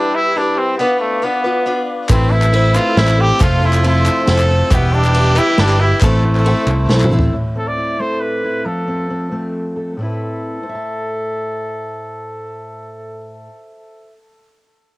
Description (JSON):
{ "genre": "indie folk with a building arrangement", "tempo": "137 BPM", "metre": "3/4", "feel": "straight", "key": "A minor", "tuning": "A4 = 440 Hz", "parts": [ { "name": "warm trumpet", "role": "melody", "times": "0.0-13.4 s", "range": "A3 to D5", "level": "-19 LUFS", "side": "equal", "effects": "cassette tape, analog delay" }, { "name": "picked acoustic archtop guitar", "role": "accompaniment", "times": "0.0-7.3 s", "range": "A2 to B4", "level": "-20 LUFS", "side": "left 2 dB", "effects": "none" }, { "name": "breathy mellow large flute ensemble", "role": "sustained chords", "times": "0.0-7.3 s", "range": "G4 to D6", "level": "-28 LUFS", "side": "equal", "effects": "none" }, { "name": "clear fiddle", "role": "second line", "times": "2.1-7.3 s", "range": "E4 to A4", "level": "-24 LUFS", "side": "right 3 dB", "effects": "none" }, { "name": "dark upright piano", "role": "accompaniment", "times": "2.1-7.3 s", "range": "F1 to G5", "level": "-25 LUFS", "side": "right 2 dB", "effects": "none" }, { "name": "picked electric bass", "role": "bass", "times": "2.1-7.3 s", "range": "E1 to C2", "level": "-14 LUFS", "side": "equal", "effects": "none" }, { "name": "unplugged drum kit", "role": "drums", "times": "2.1-7.3 s", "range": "kick drum, ride cymbal, snare drum, toms", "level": "-19 LUFS", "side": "equal", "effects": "cassette tape" }, { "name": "egg shaker", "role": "percussion", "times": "2.1-7.2 s", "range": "none", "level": "-40 LUFS", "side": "right 4 dB", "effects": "none" }, { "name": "group handclap", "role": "percussion", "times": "2.1-7.1 s", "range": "none", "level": "-27 LUFS", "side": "left 3 dB", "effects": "none" }, { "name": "fingerpicked steel-string acoustic guitar", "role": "accompaniment", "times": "7.3-14.2 s", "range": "A2 to A5", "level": "-24 LUFS", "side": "equal", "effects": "none" } ], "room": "studio ambience", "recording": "home recording on cassette", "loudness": "-13 LUFS", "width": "side -20 dB against mid", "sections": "0.0-7.3 A section; 7.3-10.0 B section; 10.0-12.6 C section", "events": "drum fill 6.9-7.3", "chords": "0.0 Em; 0.8 Bdim; 2.1 Amadd9; 3.4 F; 4.7 Em; 6.0 Am; 7.3 Amadd9; 8.6 F; 10.0 Amadd9" }